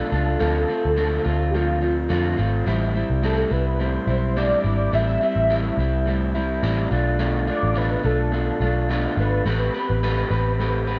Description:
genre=indie pop, bedroom pop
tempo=106 BPM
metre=4/4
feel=swing 55% on 16ths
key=A minor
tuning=A4 = 440 Hz
part: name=soft octave-layered synth lead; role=melody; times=0.0-11.0 s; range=F4 to E5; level=-28 LUFS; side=equal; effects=ensemble chorus, analog delay
part: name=electric guitar through a small old amp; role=accompaniment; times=0.0-11.0 s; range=A2 to B4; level=-26 LUFS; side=equal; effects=subtle chorus, vibrato effect
part: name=vintage muted picked electric bass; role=bass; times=0.1-11.0 s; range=G#1 to F2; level=-25 LUFS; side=equal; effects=none
room=moderate spring reverb, RT60 1.1 s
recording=dark, warm production, nothing above 7.8 kHz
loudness=-22 LUFS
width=mono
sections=0.0-11.0 A section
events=none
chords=0.4 Dm7; 2.7 Am7; 6.9 Bm7b5; 9.5 Am9

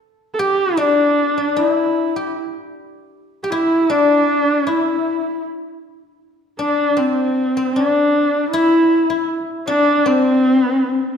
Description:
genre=mongolian traditional, Mongolian folk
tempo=78 BPM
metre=4/4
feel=straight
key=unclear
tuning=A4 = 437 Hz
part: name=guzheng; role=second line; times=0.0-11.2 s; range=C4 to A4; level=-20 LUFS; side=left 3 dB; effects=none
part: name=rich horsehead fiddle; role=melody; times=0.3-11.2 s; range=C4 to A4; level=-16 LUFS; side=equal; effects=none
room=wet scoring stage reverb, RT60 1.6 s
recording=minimal, uncompressed stereo recording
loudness=-14 LUFS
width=side -7 dB against mid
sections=0.0-11.2 A section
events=none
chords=none

